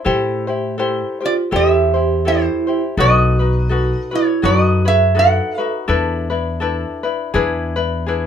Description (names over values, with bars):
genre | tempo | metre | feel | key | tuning
Hawaiian | 82 BPM | 4/4 | swing 58% on 8ths | unclear | A4 = 441 Hz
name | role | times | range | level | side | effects
ukulele | accompaniment | 0.0-8.3 s | D4 to C5 | -20 LUFS | left 4 dB | none
upright bass | bass | 0.1-8.3 s | B1 to A2 | -19 LUFS | left 1 dB | none
vibraphone with medium mallets | second line | 1.2-5.7 s | E4 to A4 | -20 LUFS | right 6 dB | none
metal-body resonator slide guitar | melody | 1.3-5.7 s | C5 to F#5 | -17 LUFS | right 2 dB | none
room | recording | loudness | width
moderate studio ambience, RT60 0.5 s | minimal, uncompressed stereo recording | -14 LUFS | side -8 dB against mid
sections
0.1-8.3 A section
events
none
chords
0.1 Am7; 3.0 B7; 5.9 E7sus4; 7.3 E7